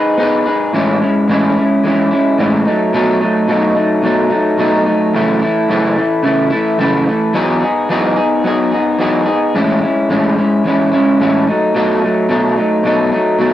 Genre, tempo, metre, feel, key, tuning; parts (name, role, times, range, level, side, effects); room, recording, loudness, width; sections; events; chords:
indie pop; 109 BPM; 4/4; straight; A lydian; A4 = 439 Hz
electric guitar through a small old amp; solo; 0.0-13.5 s; F#2 to B4; -11 LUFS; equal; wide subtle chorus, warbly pitch drift, cassette tape
moderate booth ambience, RT60 0.2 s; home recording on cassette; -11 LUFS; side -12 dB against mid
0.7-13.5 A section
0.0 Emaj7 (rootless); 0.7 Amaj7; 2.7 B7; 5.1 F#m7; 7.3 Emaj9; 9.5 Amaj7; 11.5 B7